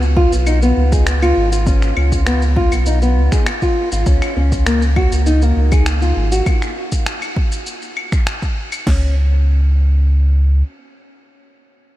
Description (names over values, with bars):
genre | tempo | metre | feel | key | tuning
organic downtempo | 100 BPM | 4/4 | straight | Db mixolydian | A4 = 440 Hz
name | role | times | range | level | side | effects
warm sub bass | bass | 0.0-10.6 s | Ab1 to Db2 | -14 LUFS | equal | tube saturation, sidechain pumping
electronic shaker, claves and finger snaps | drums | 0.0-8.8 s | none | -24 LUFS | left 1 dB | none
nylon-string guitar | arpeggios | 0.2-9.1 s | Bb3 to Ab4 | -20 LUFS | left 1 dB | diffuse ambient delay
deep house drum kit | drums | 0.2-9.0 s | crash cymbal, kick drum, snare drum | -16 LUFS | equal | overdrive
room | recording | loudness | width
light reverb, digital ambience | none | -13 LUFS | side -15 dB against mid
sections
0.0-8.9 A section; 8.9-11.3 B section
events
none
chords
0.0 Db; 4.1 N.C.